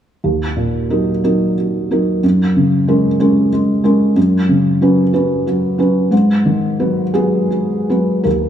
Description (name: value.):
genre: neoclassical minimalist piano.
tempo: 52-63 BPM (dotted quarters).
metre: 6/8.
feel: rubato.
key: unclear.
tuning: A4 = 440 Hz.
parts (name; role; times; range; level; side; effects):
felt-muted upright piano; solo; 0.2-8.5 s; D#2 to B4; -12 LUFS; equal; none.
room: light reverb.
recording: none.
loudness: -13 LUFS.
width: side -9 dB against mid.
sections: 0.2-8.3 A section.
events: none.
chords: 0.2 D#m; 2.2 F#add9; 4.2 Bsus2/F#; 6.1 G#m7.